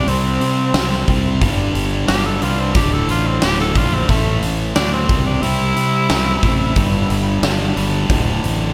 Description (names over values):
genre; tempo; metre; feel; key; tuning
classic rock; 90 BPM; 4/4; straight; unclear; A4 = 440 Hz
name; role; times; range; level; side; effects
raspy tenor saxophone; melody; 0.0-7.4 s; A3 to A4; -25 LUFS; equal; slapback echo
cranked stack guitar; riff; 0.0-8.7 s; D2 to C4; -24 LUFS; equal; overdrive, slapback echo
distorted electric guitar; riff; 0.0-8.7 s; D2 to C4; -27 LUFS; equal; distortion, slapback echo
fuzz fingered electric bass; bass; 0.0-8.7 s; D1 to C3; -23 LUFS; equal; overdrive
big rock drum kit; drums; 0.1-8.6 s; hi-hat, kick drum, snare drum; -22 LUFS; equal; none
room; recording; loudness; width
light reverb; none; -17 LUFS; mono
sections
0.0-8.7 A section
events
tenor saxophone solo 0.0-8.7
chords
0.0 C5; 1.4 G5; 2.8 D5; 4.1 A5; 5.1 C; 6.8 G5; 8.1 D5